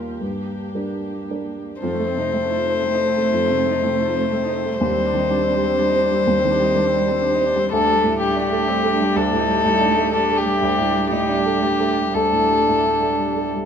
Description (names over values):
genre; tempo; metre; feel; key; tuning
neoclassical piano and strings; 109-126 BPM; 3/4; rubato; unclear; A4 = 442 Hz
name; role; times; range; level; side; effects
dark upright piano; accompaniment; 0.0-13.7 s; D2 to C5; -23 LUFS; right 1 dB; none
warm chamber string section; sustained chords; 0.0-13.7 s; A3 to D5; -31 LUFS; right 2 dB; none
warm violin; melody; 1.8-13.5 s; G4 to C5; -19 LUFS; left 4 dB; none
dark cello; second line; 1.8-13.5 s; G3 to A3; -27 LUFS; right 9 dB; none
warm viola; accompaniment; 1.8-13.5 s; F3 to Eb4; -28 LUFS; right 6 dB; none
room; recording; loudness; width
light reverb; minimal, uncompressed stereo recording; -17 LUFS; side -7 dB against mid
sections
0.0-1.8 A section; 1.8-13.7 B section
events
none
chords
0.2 Gm; 1.8 F7; 4.8 Cmadd9/Eb; 7.7 Dsus4